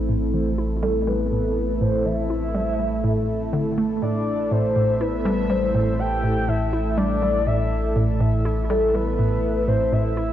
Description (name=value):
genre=ambient, sequencer-driven space music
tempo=122 BPM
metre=4/4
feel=straight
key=A minor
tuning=A4 = 439 Hz
part: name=sweeping resonant pad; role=sustained chords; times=0.0-10.3 s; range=A3 to E5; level=-26 LUFS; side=right 1 dB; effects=chorus
part: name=warm sub bass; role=bass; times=0.0-10.3 s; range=A1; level=-27 LUFS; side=equal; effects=none
part: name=hollow square pluck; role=riff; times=0.1-10.3 s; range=A2 to E4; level=-25 LUFS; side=equal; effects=chorus, analog delay
part: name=soft octave-layered synth lead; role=melody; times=0.8-10.3 s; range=A4 to G5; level=-25 LUFS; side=left 1 dB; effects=chorus, phaser, analog delay
room=wet scoring stage reverb, RT60 2.1 s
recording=worn, warbling old tape, cassette tape, warbly pitch drift, nothing above 7.8 kHz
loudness=-20 LUFS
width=side -11 dB against mid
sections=0.0-10.3 A section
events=none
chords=0.0 Am7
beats=| 0.09 0.58 1.07 1.56 | 2.06 2.55 3.04 3.53 | 4.02 4.52 5.01 5.50 | 5.99 6.48 6.97 7.47 | 7.96 8.45 8.94 9.43 | 9.93